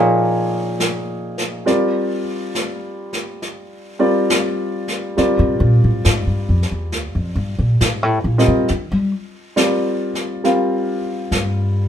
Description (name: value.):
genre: jazz.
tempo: 69 BPM.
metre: 4/4.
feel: swing 66% on 8ths.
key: unclear.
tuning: A4 = 443 Hz.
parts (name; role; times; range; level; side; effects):
warm concert grand piano; accompaniment; 0.0-11.9 s; E#3 to F5; -20 LUFS; equal; none.
upright bass; bass; 0.0-11.9 s; D2 to G3; -17 LUFS; equal; none.
snare drum and brushed snare drum; drums; 0.8-11.9 s; none; -23 LUFS; equal; none.
room: light reverb.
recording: minimal, uncompressed stereo recording.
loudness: -16 LUFS.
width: side -9 dB against mid.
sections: 0.0-11.9 A section.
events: upright bass solo 0.0-11.9.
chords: 0.0 C#add9; 1.7 Csus2; 5.2 Bb7; 8.7 Gm11.